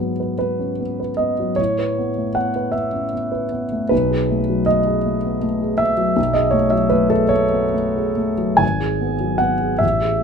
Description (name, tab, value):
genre	classical, impressionist solo piano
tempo	45-54 BPM (dotted quarters)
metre	6/8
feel	rubato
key	unclear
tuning	A4 = 441 Hz
part	clear concert grand piano	solo	0.0-10.2 s	G#1 to G#5	-17 LUFS	equal	none
room	light reverb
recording	minimal, uncompressed stereo recording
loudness	-17 LUFS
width	side -6 dB against mid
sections	0.0-10.2 A section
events	none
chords	0.0 G#m7; 1.6 Aadd9; 3.9 B6; 8.6 G#m7